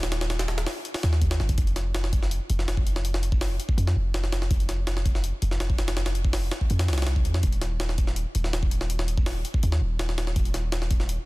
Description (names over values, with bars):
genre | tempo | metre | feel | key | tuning
drum and bass, jungle | 164 BPM | 4/4 | straight | unclear | A4 = 443 Hz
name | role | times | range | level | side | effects
long sustained 808-style bass | bass | 0.0-11.2 s | Eb1 to F2 | -25 LUFS | equal | none
jungle sampler-style drum kit | drums | 0.0-11.2 s | hi-hat, kick drum, snare drum | -26 LUFS | equal | none
room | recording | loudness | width
digital ambience | dense, heavily limited modern master | -23 LUFS | side -21 dB against mid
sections
0.0-11.3 A section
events
none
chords
none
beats
| 0.12 0.48 0.85 1.22 | 1.58 1.95 2.31 2.68 | 3.05 3.41 3.78 4.14 | 4.51 4.88 5.24 5.61 | 5.97 6.34 6.70 7.07 | 7.44 7.80 8.17 8.53 | 8.90 9.27 9.63 10.00 | 10.36 10.73 11.09